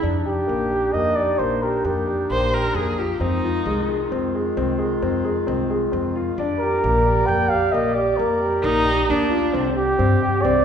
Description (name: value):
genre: contemporary instrumental, contemporary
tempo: 132 BPM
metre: 7/4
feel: straight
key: unclear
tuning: A4 = 439 Hz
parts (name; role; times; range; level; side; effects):
- clear woodwind section; sustained chords; 0.0-10.6 s; D3 to D5; -29 LUFS; equal; none
- dark grand piano; arpeggios; 0.0-10.6 s; Ab3 to Ab4; -23 LUFS; left 2 dB; none
- upright bass; bass; 0.0-10.6 s; Bb1 to G2; -26 LUFS; equal; none
- mellow flugelhorn; melody; 0.3-10.6 s; G4 to G5; -22 LUFS; right 2 dB; none
- warm viola; second line; 2.3-9.7 s; D4 to C5; -23 LUFS; right 1 dB; none
room: wet scoring stage reverb, RT60 1.5 s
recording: recorded in a church or concert hall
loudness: -18 LUFS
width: side -8 dB against mid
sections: 0.0-10.6 A section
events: none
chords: 0.0 Ebmaj7; 3.2 Fm7; 6.4 Ebmaj7; 9.5 Csus2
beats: | 0.03 0.48 0.94 1.39 1.85 2.30 2.75 | 3.21 3.66 4.11 4.57 5.02 5.47 5.92 | 6.38 6.83 7.28 7.73 8.19 8.64 9.09 | 9.54 9.99 10.44